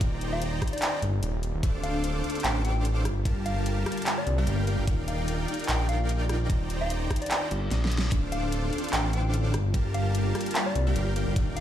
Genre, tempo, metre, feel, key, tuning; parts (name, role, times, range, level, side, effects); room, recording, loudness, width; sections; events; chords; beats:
future bass; 148 BPM; 4/4; swing 56% on 16ths, half-time; G minor; A4 = 438 Hz
shimmering ambient pad; sustained chords; 0.0-11.6 s; D3 to D5; -38 LUFS; right 1 dB; chorus, built-in reverb, sidechain pumping
dense compressed supersaw; riff; 0.0-11.6 s; G3 to D6; -32 LUFS; equal; sidechain pumping
fat analog bass; bass; 0.0-11.6 s; D1 to C2; -27 LUFS; equal; sidechain pumping
dubstep drum kit; drums; 0.0-11.6 s; handclaps, hi-hat, rim click, snare drum; -32 LUFS; equal; overdrive
electronic kick drum; drums; 0.0-11.5 s; -27 LUFS; equal; overdrive
soft struck synth lead; melody; 0.3-11.6 s; D5 to G5; -37 LUFS; left 2 dB; chorus, sidechain pumping, digital delay
reverse cymbal; sound effects; 7.5-8.1 s; -43 LUFS; left 2 dB
little or no reverb; played on a big sound system in a bare room, large studio reverb; -25 LUFS; side -11 dB against mid
0.0-11.6 A section
reverse cymbal 7.5-8.1; drum fill 7.7-8.1
0.0 Cm7/Eb; 1.6 Dm7; 3.1 Gm7; 4.9 Ebmaj9; 6.5 Cm7/Eb; 8.1 Dm7; 9.5 Gm7
| 0.01 0.42 0.82 1.23 | 1.63 2.04 2.44 2.85 | 3.25 3.66 4.07 4.47 | 4.88 5.28 5.69 6.09 | 6.50 6.90 7.31 7.71 | 8.12 8.52 8.93 9.34 | 9.74 10.15 10.55 10.96 | 11.36